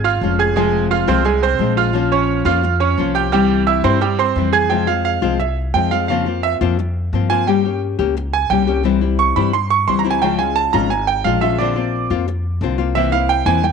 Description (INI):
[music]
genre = latin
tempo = 174 BPM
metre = 4/4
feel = straight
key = F harmonic minor from 4.7 s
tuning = A4 = 441 Hz
[part]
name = bright concert grand piano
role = arpeggios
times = 0.0-13.7 s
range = G3 to Ab6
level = -17 LUFS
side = right 10 dB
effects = none
[part]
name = upright bass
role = bass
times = 0.0-13.7 s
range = F1 to G2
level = -21 LUFS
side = left 1 dB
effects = none
[part]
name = nylon-string guitar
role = accompaniment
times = 0.2-13.7 s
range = C3 to G4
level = -19 LUFS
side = left 12 dB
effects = none
[sound]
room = moderate spring reverb, RT60 1.4 s, small room ambience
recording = 1960s-style stereo with parts hard left and right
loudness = -15 LUFS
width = side -6 dB against mid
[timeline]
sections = 0.0-4.7 A section; 4.7-13.7 B section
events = grand piano solo 4.7-13.7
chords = 0.0 Db; 0.6 Fm; 1.9 Bbm; 3.3 C; 6.1 Bbmadd9/F; 7.5 Gdim; 8.8 C; 10.2 Db; 11.6 Bbadd9; 13.0 C7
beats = 0.22 | 0.56 0.91 1.25 1.60 | 1.94 2.29 2.63 2.98 | 3.32 3.67 4.01 4.36 | 4.71 5.05 5.40 5.74 | 6.09 6.43 6.78 7.12 | 7.47 7.81 8.16 8.50 | 8.85 9.19 9.53 9.88 | 10.22 10.56 10.91 11.25 | 11.59 11.93 12.27 12.62 | 12.96 13.30 13.64